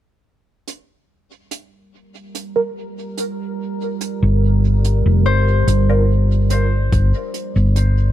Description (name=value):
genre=ambient dub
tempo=72 BPM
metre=4/4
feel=straight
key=G minor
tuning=A4 = 442 Hz
part: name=deep dark ambient pad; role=sustained chords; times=2.3-8.1 s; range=G3 to D5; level=-24 LUFS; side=right 4 dB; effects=chorus, built-in reverb
part: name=hi-hat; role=drums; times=0.7-7.9 s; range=none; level=-31 LUFS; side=right 7 dB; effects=dub echo
part: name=filtered dub chord stab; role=stabs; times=2.6-6.2 s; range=G3 to Bb4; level=-24 LUFS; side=right 2 dB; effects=phaser, ensemble chorus, dub echo
part: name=hollow-body short-scale fingered electric bass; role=bass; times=4.2-8.1 s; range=F1 to G1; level=-14 LUFS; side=equal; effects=none
part: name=Celtic harp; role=arpeggios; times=5.3-7.2 s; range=C5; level=-25 LUFS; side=left 7 dB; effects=analog delay
part: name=electronic kick drum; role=drums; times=6.9-7.1 s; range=none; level=-21 LUFS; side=equal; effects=overdrive
room=light reverb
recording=echo-heavy mix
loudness=-15 LUFS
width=side -13 dB against mid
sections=0.3-6.9 A section; 6.9-8.1 B section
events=fade-in on ambient pad 0.3-6.9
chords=0.3 Gm7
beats=| 0.26 1.09 1.93 2.76 | 3.59 4.42 5.26 6.09 | 6.92 7.76